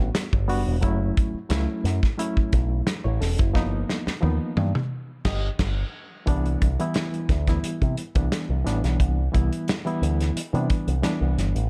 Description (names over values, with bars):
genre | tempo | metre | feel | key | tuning
funk | 88 BPM | 4/4 | straight | unclear | A4 = 438 Hz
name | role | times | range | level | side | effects
bright reed electric piano | stabs | 0.0-11.6 s | E3 to D#5 | -31 LUFS | equal | overdrive, fast tremolo
picked electric bass with an envelope filter | bass | 0.0-11.7 s | E1 to C3 | -26 LUFS | equal | none
warm soul drum kit | drums | 0.1-11.7 s | crash cymbal, hi-hat, kick drum, snare drum, toms | -27 LUFS | equal | none
room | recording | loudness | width
studio ambience | dark, warm production | -24 LUFS | mono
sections
0.0-6.3 A section; 6.3-11.7 B section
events
drum fill 3.5-6.3; band accent 4.9-6.3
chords
0.0 Em7; 0.8 F#m7; 3.5 G7alt; 6.3 Cmaj9